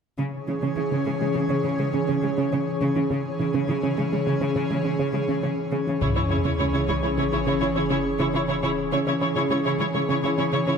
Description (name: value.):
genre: cinematic, hybrid orchestral and electronic film score.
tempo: 103 BPM.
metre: 5/4.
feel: straight.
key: C# minor.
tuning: A4 = 441 Hz.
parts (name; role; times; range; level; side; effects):
airy breathy pad; sustained chords; 0.2-10.8 s; E3 to C#5; -25 LUFS; equal; chorus.
analog pluck; arpeggios; 0.2-10.8 s; C#3 to C#4; -30 LUFS; right 3 dB; chorus, ping-pong delay.
rich symphonic cello section; bass; 0.2-10.7 s; C#3; -28 LUFS; right 1 dB; none.
warm symphonic viola section; accompaniment; 6.0-10.7 s; E4 to C#5; -26 LUFS; equal; none.
taiko ensemble; drums; 6.0-7.2 s; none; -32 LUFS; left 2 dB; none.
sub drop; sound effects; 6.0-8.9 s; none; -30 LUFS; left 2 dB; none.
room: wet scoring stage reverb, RT60 1.5 s.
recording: none.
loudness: -22 LUFS.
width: side -6 dB against mid.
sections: 0.2-6.0 A section; 6.0-10.8 B section.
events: impact 6.0-8.9.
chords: 0.2 C#m.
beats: | 0.19 0.77 1.35 1.94 2.52 | 3.10 3.68 4.27 4.85 5.43 | 6.01 6.60 7.18 7.76 8.34 | 8.93 9.51 10.09 10.67.